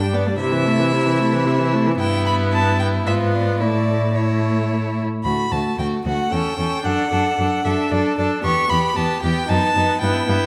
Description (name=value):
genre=quick classical-period movement for string quartet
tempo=113 BPM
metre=3/4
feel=straight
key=D major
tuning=A4 = 440 Hz
part: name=clear violin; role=melody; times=0.0-10.5 s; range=C#5 to C#6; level=-26 LUFS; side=equal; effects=none
part: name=clear violin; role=second line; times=0.0-10.5 s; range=D4 to A4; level=-26 LUFS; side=equal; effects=none
part: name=rich viola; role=accompaniment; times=0.0-10.5 s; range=C3 to D4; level=-26 LUFS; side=equal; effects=none
part: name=rich cello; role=bass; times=0.0-10.4 s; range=D2 to C3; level=-24 LUFS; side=equal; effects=none
room=moderate recital hall reverb, RT60 1.6 s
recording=none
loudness=-19 LUFS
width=mono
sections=0.0-5.2 A section; 5.2-10.5 B section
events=none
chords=0.4 Am/C; 2.0 Em/G; 3.1 G#dim7; 3.6 A; 5.2 D; 6.3 A7/E; 6.8 D/F#; 8.4 Em; 9.5 B7/F#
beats=| 0.41 0.94 1.47 | 2.00 2.52 3.06 | 3.60 4.15 4.70 | 5.24 5.78 6.32 | 6.85 7.38 7.92 | 8.44 8.96 9.49 | 10.02